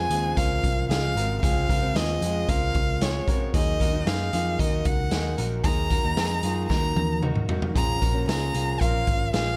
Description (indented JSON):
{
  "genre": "jangly indie pop",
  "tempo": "114 BPM",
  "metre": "4/4",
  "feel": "straight",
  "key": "unclear",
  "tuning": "A4 = 439 Hz",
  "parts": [
    { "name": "warm violin", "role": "melody", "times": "0.0-9.6 s", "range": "Db5 to Bb5", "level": "-31 LUFS", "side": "equal", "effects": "none" },
    { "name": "fingerpicked steel-string acoustic guitar", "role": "accompaniment", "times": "0.0-9.6 s", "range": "Bb2 to Eb4", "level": "-36 LUFS", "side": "equal", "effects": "none" },
    { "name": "electric guitar through a small old amp", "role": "arpeggios", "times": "0.0-9.6 s", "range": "Eb4 to Bb4", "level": "-34 LUFS", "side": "equal", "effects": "none" },
    { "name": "vintage muted picked electric bass", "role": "bass", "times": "0.0-9.6 s", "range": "Ab1 to Gb2", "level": "-30 LUFS", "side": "equal", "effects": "none" },
    { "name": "raw garage drum kit", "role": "drums", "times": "0.1-9.5 s", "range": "hi-hat, kick drum, snare drum, toms", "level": "-28 LUFS", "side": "equal", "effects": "none" }
  ],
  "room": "studio reverb",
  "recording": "none",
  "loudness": "-24 LUFS",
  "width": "mono",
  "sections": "0.0-9.6 A section",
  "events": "drum fill 6.7-7.8",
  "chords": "0.0 Dbmaj7; 3.5 Ebm; 7.8 Bbm",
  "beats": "0.37 0.90 | 1.42 1.95 2.48 3.01 | 3.54 4.06 4.59 5.12 | 5.65 6.17 6.70 7.23 | 7.75 8.28 8.81 9.33"
}